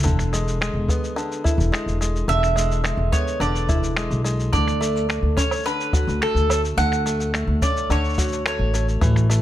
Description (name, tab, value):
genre	folktronica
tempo	107 BPM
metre	4/4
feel	straight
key	unclear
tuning	A4 = 441 Hz
part	open-back banjo	arpeggios	0.0-9.4 s	D3 to F#4	-26 LUFS	left 1 dB	ping-pong delay
part	electronic shaker, finger snaps and woodblock	drums	0.0-9.4 s	none	-28 LUFS	equal	none
part	upright bass	bass	0.1-9.4 s	E1 to D2	-22 LUFS	equal	none
part	kick drum	drums	0.1-9.1 s	none	-23 LUFS	equal	none
part	mandolin	melody	2.3-8.9 s	A4 to F#5	-25 LUFS	right 2 dB	ping-pong delay
room	small room reverb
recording	none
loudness	-19 LUFS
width	side -13 dB against mid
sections	0.0-9.4 A section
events	none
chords	0.0 E7; 4.5 Dmaj7